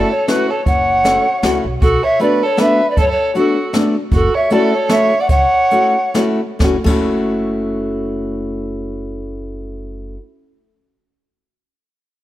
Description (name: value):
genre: musette waltz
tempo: 127-158 BPM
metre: 3/4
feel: swing 55% on 8ths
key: F# minor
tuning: A4 = 441 Hz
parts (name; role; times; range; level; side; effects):
- breathy reedy pan flute; melody; 0.0-6.1 s; A4 to F#5; -16 LUFS; equal; none
- warm violin; second line; 0.0-6.1 s; F#4 to D5; -20 LUFS; right 4 dB; none
- picked steel-string acoustic guitar; accompaniment; 0.0-10.2 s; A3 to F#4; -18 LUFS; left 1 dB; none
- jazz brush drum kit; drums; 0.3-7.0 s; crash cymbal, hi-hat, kick drum, snare drum; -19 LUFS; equal; none
- upright bass; bass; 0.7-10.2 s; F#1 to F#2; -25 LUFS; equal; none
room: moderate lush hall reverb, RT60 1.6 s, small room ambience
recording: rough home demo mix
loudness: -13 LUFS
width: side -14 dB against mid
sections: 0.0-1.8 A section; 1.8-6.6 B section; 6.6-9.4 C section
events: slowing down 4.1-6.6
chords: 0.0 F#m7; 1.8 Bm7; 4.1 F#m7